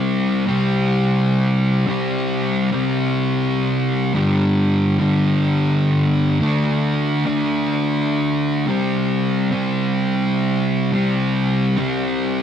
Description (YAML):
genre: rock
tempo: 106 BPM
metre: 4/4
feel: straight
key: unclear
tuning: A4 = 440 Hz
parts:
  - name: fuzz guitar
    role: solo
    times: 0.0-12.4 s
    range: G2 to D4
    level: -16 LUFS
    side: equal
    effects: distortion
room: moderate stone room reverb, RT60 1.0 s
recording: rough rehearsal-room recording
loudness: -16 LUFS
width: side -9 dB against mid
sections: 0.0-12.4 A section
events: none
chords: 0.0 C5; 4.2 G5; 6.4 D5; 8.7 C5